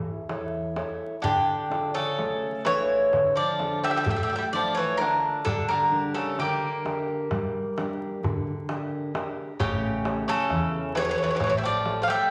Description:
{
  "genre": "greek folk, Greek bouzouki band",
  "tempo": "130 BPM (eighths)",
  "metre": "9/8",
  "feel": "straight",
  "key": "D harmonic minor",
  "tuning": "A4 = 440 Hz",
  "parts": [
    { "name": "Greek bouzouki", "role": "melody", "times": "0.0-12.3 s", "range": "D4 to F5", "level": "-28 LUFS", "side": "equal", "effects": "none" },
    { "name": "Greek bouzouki", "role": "second line", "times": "0.0-12.3 s", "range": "C#3 to Bb3", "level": "-31 LUFS", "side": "equal", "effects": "none" },
    { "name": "fingerpicked steel-string acoustic guitar", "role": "accompaniment", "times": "0.0-12.3 s", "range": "D3 to F5", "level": "-34 LUFS", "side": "equal", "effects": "none" },
    { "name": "upright bass", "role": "bass", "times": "0.0-0.8, 9.6-12.0 s", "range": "A1 to E2", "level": "-36 LUFS", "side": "equal", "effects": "none" },
    { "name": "darbuka", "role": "percussion", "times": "0.3-12.2 s", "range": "none", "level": "-36 LUFS", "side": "equal", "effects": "none" }
  ],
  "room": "wet large studio reverb, RT60 1.3 s",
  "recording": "vinyl crackle",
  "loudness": "-26 LUFS",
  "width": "mono",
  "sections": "0.0-1.2 A section; 1.2-12.3 B section",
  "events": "speeding up 0.0-12.3",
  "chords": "0.0 A; 1.2 Dm; 5.5 Gm; 9.6 A7",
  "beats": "0.29 0.77 | 1.24 1.72 2.19 2.66 3.13 3.60 4.07 4.54 5.00 | 5.47 5.93 6.39 6.86 7.32 7.77 8.23 8.69 9.15 | 9.60 10.05 10.51 10.96 11.41 11.86"
}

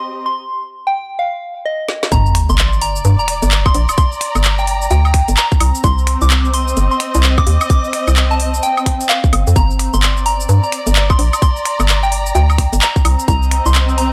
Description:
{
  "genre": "UK garage, two-step garage",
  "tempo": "129 BPM",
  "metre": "4/4",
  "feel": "swing 62% on 16ths",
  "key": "C minor",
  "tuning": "A4 = 440 Hz",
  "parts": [
    { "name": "soft synth bell", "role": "melody", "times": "0.0-14.1 s", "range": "Eb5 to D6", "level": "-22 LUFS", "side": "equal", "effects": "chorus, phaser, tape echo" },
    { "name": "rich symphonic string section", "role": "texture", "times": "0.0-14.1 s", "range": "C4 to Bb5", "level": "-26 LUFS", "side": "equal", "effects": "sidechain pumping" },
    { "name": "garage drum kit", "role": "drums", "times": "1.9-14.1 s", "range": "finger snaps, handclaps, hi-hat, shaker, snare drum, woodblock", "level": "-21 LUFS", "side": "equal", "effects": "overdrive" },
    { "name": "hollow knocking FM bass", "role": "bass", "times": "2.1-14.1 s", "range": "G1 to G2", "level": "-16 LUFS", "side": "equal", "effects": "sidechain pumping" },
    { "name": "electronic kick drum", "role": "drums", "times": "2.1-13.4 s", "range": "none", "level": "-16 LUFS", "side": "equal", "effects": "none" },
    { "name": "sub drop", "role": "sound effects", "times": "2.1-4.0 s", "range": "none", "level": "-22 LUFS", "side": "equal", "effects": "none" }
  ],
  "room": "little or no reverb",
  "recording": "dry, gritty hardware recording, transformer saturation",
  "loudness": "-14 LUFS",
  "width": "mono",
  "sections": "0.0-2.1 A section; 2.1-14.1 B section",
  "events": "drum fill 1.9; drop 2.1-14.1; impact 2.1-4.0",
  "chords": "0.0 Cm; 2.1 Gm; 5.6 Cm7; 9.6 Gm; 13.0 Cm7",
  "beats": "| 0.26 0.72 1.19 1.65 | 2.12 2.58 3.05 3.51 | 3.98 4.44 4.91 5.37 | 5.84 6.30 6.77 7.23 | 7.70 8.16 8.63 9.10 | 9.56 10.03 10.49 10.96 | 11.42 11.89 12.35 12.82 | 13.28 13.75"
}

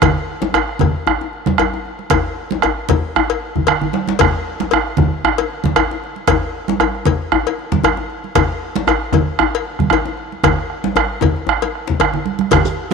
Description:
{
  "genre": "west african traditional, West African drum ensemble",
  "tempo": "115 BPM",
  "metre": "4/4",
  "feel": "swing 55% on 16ths",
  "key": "none",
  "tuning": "none",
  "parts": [
    { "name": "bombo", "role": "percussion", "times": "0.0-12.7 s", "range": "none", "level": "-18 LUFS", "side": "right 2 dB", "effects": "none" },
    { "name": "congas", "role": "percussion", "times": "0.0-12.9 s", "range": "none", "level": "-21 LUFS", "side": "right 10 dB", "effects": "none" },
    { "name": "cowbell", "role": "percussion", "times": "0.0-12.6 s", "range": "none", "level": "-22 LUFS", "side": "left 11 dB", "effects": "none" },
    { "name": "djembe", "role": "percussion", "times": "0.0-12.6 s", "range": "none", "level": "-21 LUFS", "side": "left 6 dB", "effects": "none" },
    { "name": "djembe", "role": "percussion", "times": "12.5-12.9 s", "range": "none", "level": "-22 LUFS", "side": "right 7 dB", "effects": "none" },
    { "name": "shekere", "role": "percussion", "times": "12.5-12.7 s", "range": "none", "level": "-30 LUFS", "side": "left 9 dB", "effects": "none" }
  ],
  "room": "moderate plate reverb, RT60 3.1 s",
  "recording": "1960s-style stereo with parts hard left and right",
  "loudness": "-15 LUFS",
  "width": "side -5 dB against mid",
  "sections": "0.0-12.5 A section",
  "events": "drum fill 3.5-4.2, 12.0-12.5",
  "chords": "none",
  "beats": "| 0.02 0.54 1.06 1.58 | 2.10 2.63 3.15 3.67 | 4.19 4.71 5.23 5.75 | 6.27 6.79 7.31 7.83 | 8.35 8.87 9.39 9.91 | 10.43 10.95 11.47 11.99 | 12.51"
}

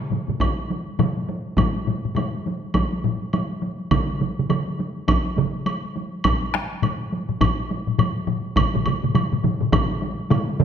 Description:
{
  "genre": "japanese traditional, taiko drum ensemble",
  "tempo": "103 BPM",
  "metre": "4/4",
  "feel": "swing 60% on 16ths",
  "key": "none",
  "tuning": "none",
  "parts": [
    { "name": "taiko ensemble", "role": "percussion", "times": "0.0-10.6 s", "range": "none", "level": "-26 LUFS", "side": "equal", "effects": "none" },
    { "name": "taiko ensemble", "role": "percussion", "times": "0.1-10.6 s", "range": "none", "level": "-25 LUFS", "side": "left 6 dB", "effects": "none" },
    { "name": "taiko ensemble", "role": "percussion", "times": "0.1-10.6 s", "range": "none", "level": "-24 LUFS", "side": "right 5 dB", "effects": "none" },
    { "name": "solo taiko drums", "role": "percussion", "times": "0.4-9.9 s", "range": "none", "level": "-25 LUFS", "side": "right 1 dB", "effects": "none" },
    { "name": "woodblock", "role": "percussion", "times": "0.4-10.5 s", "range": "none", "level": "-28 LUFS", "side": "right 2 dB", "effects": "none" }
  ],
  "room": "wet recital hall reverb, RT60 1.5 s",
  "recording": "none",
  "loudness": "-20 LUFS",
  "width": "side -8 dB against mid",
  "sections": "0.0-10.6 A section",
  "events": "none",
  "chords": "none",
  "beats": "0.41 1.00 | 1.58 2.17 2.75 3.34 | 3.92 4.51 5.09 5.67 | 6.25 6.83 7.42 8.00 | 8.58 9.15 9.73 10.31"
}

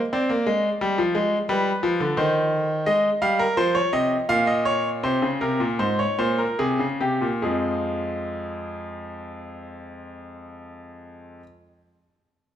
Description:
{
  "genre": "classical, baroque-style two-part invention for grand piano",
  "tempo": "68-89 BPM",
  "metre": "3/4",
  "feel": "straight",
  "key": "F minor",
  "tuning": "A4 = 439 Hz",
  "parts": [
    { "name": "bright grand piano", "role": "solo", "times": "0.1-11.4 s", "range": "F2 to F5", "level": "-22 LUFS", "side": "equal", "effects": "none" }
  ],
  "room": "wet recital hall reverb, RT60 1.7 s",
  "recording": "none",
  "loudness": "-20 LUFS",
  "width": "side -10 dB against mid",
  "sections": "0.0-7.4 A section; 7.4-12.6 B section",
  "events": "slowing down 1.8-7.4",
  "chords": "0.1 Bb9; 0.8 G7; 2.2 Cm/Eb; 2.9 Fm; 4.3 Bbmadd11; 5.0 C5; 7.4 Fm",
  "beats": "0.13 | 0.81 1.49 2.17 | 2.86 3.56 4.28 | 5.02 5.79 6.59 | 7.44 8.31 9.18 | 10.06 10.93"
}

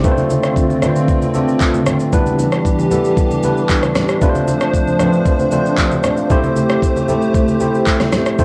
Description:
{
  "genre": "amapiano",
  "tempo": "115 BPM",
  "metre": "4/4",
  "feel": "straight",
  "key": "D dorian",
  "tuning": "A4 = 440 Hz",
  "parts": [
    { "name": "tine electric piano", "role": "accompaniment", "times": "0.0-8.4 s", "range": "G3 to F5", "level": "-20 LUFS", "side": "equal", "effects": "cassette tape" },
    { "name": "hollow soft pad", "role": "sustained chords", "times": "0.0-8.4 s", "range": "D3 to C5", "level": "-21 LUFS", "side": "equal", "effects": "ensemble chorus, sidechain pumping, cassette tape" },
    { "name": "smooth R&B drum kit", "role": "drums", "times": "0.0-8.4 s", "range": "handclaps, kick drum, rim click, shaker, snare drum", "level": "-20 LUFS", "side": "equal", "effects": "cassette tape" },
    { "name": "congas", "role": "percussion", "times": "0.0-8.4 s", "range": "none", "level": "-25 LUFS", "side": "equal", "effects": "none" }
  ],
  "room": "moderate spring reverb, RT60 2.0 s",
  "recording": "home recording on cassette",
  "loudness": "-15 LUFS",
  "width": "mono",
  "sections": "0.0-8.4 A section",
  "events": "none",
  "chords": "0.0 Dm7; 2.1 Em7; 4.2 Dm7; 6.3 Am7",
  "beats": "| 0.04 0.56 1.08 1.61 | 2.13 2.65 3.17 3.69 | 4.21 4.74 5.26 5.78 | 6.30 6.82 7.34 7.87 | 8.39"
}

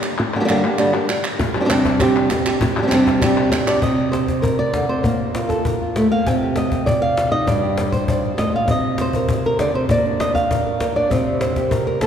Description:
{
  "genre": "flamenco",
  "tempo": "198 BPM",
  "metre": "4/4",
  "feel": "straight",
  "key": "unclear",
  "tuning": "A4 = 439 Hz",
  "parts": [
    { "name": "palmas hand claps", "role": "percussion", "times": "0.0-3.8 s", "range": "none", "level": "-25 LUFS", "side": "equal", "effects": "none" },
    { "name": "flamenco guitar", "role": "melody", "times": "0.2-12.1 s", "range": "G2 to G5", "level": "-17 LUFS", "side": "right 1 dB", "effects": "none" },
    { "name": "cajon", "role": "percussion", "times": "1.4-12.1 s", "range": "none", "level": "-23 LUFS", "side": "left 2 dB", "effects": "none" }
  ],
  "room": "wet church reverb, RT60 3.2 s",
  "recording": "recorded in a church or concert hall",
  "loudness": "-16 LUFS",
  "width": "side -8 dB against mid",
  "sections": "0.0-3.8 A section; 3.8-12.1 B section",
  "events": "none",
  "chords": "0.0 Gm; 1.4 Csus2; 3.8 Cm7; 5.0 Bb5; 6.3 Cm; 7.5 G5; 8.7 Cm7; 9.9 Bb; 11.1 Cm7",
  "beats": "| 0.18 0.49 0.79 1.09 | 1.40 1.70 2.01 2.31 | 2.62 2.92 3.22 3.53 | 3.83 4.14 4.44 4.75 | 5.05 5.35 5.66 5.96 | 6.26 6.57 6.87 7.17 | 7.48 7.78 8.08 8.39 | 8.69 8.99 9.29 9.60 | 9.90 10.20 10.50 10.81 | 11.11 11.41 11.71 12.02"
}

